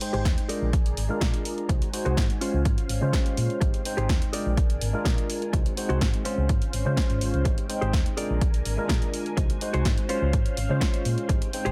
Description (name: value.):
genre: filtered disco house.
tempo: 125 BPM.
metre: 4/4.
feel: straight.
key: unclear.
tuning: A4 = 440 Hz.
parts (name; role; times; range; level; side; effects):
tine electric piano; accompaniment; 0.0-11.7 s; Ab3 to G5; -33 LUFS; equal; phaser, sidechain pumping, low-pass filter.
string machine, full ensemble; sustained chords; 0.0-11.7 s; Ab3 to C6; -39 LUFS; equal; ensemble chorus, vintage 12-bit sampler grit, sidechain pumping, low-pass filter.
punchy analog drum machine; drums; 0.0-11.7 s; hi-hat, snare drum; -36 LUFS; equal; overdrive, sidechain pumping on hats, sidechain pumping on cymbals.
direct-recorded clean electric guitar; riff; 0.1-11.7 s; Db4 to D5; -36 LUFS; equal; sidechain pumping, low-pass filter.
hollow-body short-scale fingered electric bass; bass; 0.1-11.7 s; Ab1 to Db3; -30 LUFS; equal; sidechain pumping, low-pass filter.
electronic kick drum; drums; 0.3-11.4 s; none; -27 LUFS; equal; overdrive.
room: little or no reverb.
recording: none.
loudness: -25 LUFS.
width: mono.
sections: 0.0-11.7 A section.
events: filter sweep 0.0-11.7.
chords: 0.5 Bb7; 1.7 Ab7/C; 2.4 Dbmaj7; 3.6 Abmaj7; 4.3 Bb7; 5.5 Ab7/C; 6.3 Dbmaj7; 7.5 Abmaj7; 8.2 Bb7; 9.4 Ab7/C; 10.1 Dbmaj7.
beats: 0.26 0.73 1.22 | 1.70 2.17 2.65 3.13 | 3.62 4.09 4.58 5.05 | 5.54 6.01 6.50 6.97 | 7.46 7.93 8.41 8.89 | 9.38 9.86 10.34 10.81 | 11.29.